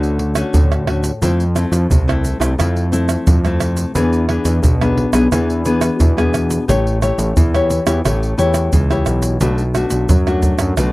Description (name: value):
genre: samba and choro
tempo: 88 BPM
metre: 4/4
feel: straight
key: unclear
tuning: A4 = 440 Hz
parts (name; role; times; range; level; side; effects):
- nylon-string guitar; accompaniment; 0.0-10.9 s; A2 to C#5; -19 LUFS; left 2 dB; none
- fat analog bass; bass; 0.0-10.9 s; A1 to F#2; -17 LUFS; equal; none
- egg shaker, pandeiro, tamborim and surdo; percussion; 0.0-10.9 s; none; -16 LUFS; right 1 dB; none
room: little or no reverb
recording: dry, close 1970s-style studio recording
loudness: -13 LUFS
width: side -19 dB against mid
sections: 0.0-10.9 A section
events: none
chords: 0.0 Dmaj7; 1.2 Fmaj7; 4.0 E7; 6.7 A7; 9.4 Bm7